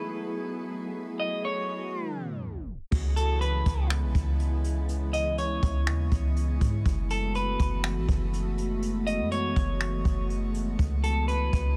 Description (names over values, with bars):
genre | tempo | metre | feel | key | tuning
hip hop, atmospheric cloud-rap | 122 BPM | 4/4 | half-time | C# minor | A4 = 440 Hz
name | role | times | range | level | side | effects
glassy FM pad | sustained chords | 0.0-11.8 s | C#3 to G#4 | -36 LUFS | equal | ensemble chorus, built-in reverb, sidechain pumping
clean electric guitar | melody | 1.2-11.7 s | A4 to D#5 | -36 LUFS | equal | lush chorus, digital delay
soft 808-style bass | bass | 2.9-11.8 s | F#1 to G#2 | -30 LUFS | equal | none
jazz brush drum kit | drums | 2.9-11.6 s | crash cymbal, finger snaps, hi-hat, kick drum | -31 LUFS | equal | vintage 12-bit sampler grit
room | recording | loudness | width
studio reverb | tape stop | -28 LUFS | mono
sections
0.0-2.9 A section; 2.9-11.8 B section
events
tape stop 1.9-2.9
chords
0.0 F#m11; 2.9 C#m7; 6.9 F#m11; 10.8 C#m7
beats
0.46 | 0.95 1.45 1.94 2.43 | 2.92 3.41 3.90 4.40 | 4.89 5.38 5.87 6.36 | 6.86 7.35 7.84 8.33 | 8.82 9.31 9.81 10.30 | 10.79 11.28